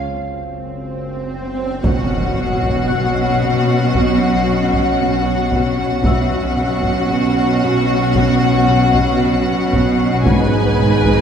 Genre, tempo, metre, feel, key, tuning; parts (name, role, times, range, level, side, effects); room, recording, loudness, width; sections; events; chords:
cinematic, suspense film score; 57 BPM; 4/4; straight; A4 = 439 Hz
organ-like drone; drone; 0.0-11.2 s; F#1 to B1; -24 LUFS; equal; ensemble chorus, built-in reverb
swell and impact; sound effects; 0.1-6.0 s; -26 LUFS; right 1 dB
rich studio violin section; melody; 1.8-11.2 s; F#5 to G#5; -24 LUFS; left 5 dB
rich studio violin section; second line; 1.8-11.2 s; F#4 to B4; -22 LUFS; left 2 dB
warm studio viola section; accompaniment; 1.8-11.2 s; C#4 to D#4; -24 LUFS; right 3 dB
clear studio cello section; bass; 1.8-11.2 s; G#2 to B2; -21 LUFS; right 2 dB
clear studio double bass section; bass; 1.8-11.2 s; G#1 to B1; -23 LUFS; left 1 dB
solo taiko drums; drums; 1.8-11.2 s; -22 LUFS; equal
glass harmonica; sustained chords; 1.9-11.2 s; F#4 to F#5; -23 LUFS; left 2 dB
rich studio cello section; riff; 1.9-11.1 s; G#2 to B2; -23 LUFS; right 1 dB
celesta; texture; 2.9-10.3 s; E5 to F#6; -31 LUFS; left 4 dB
wet concert hall reverb, RT60 2.2 s; recorded in a church or concert hall; -13 LUFS; side -8 dB against mid
0.0-1.8 A section; 1.8-11.2 B section
break 0.0-1.8; swell 0.1-1.8; impact 1.8-6.1
0.0 N.C.; 1.8 Bsus2; 10.3 G#m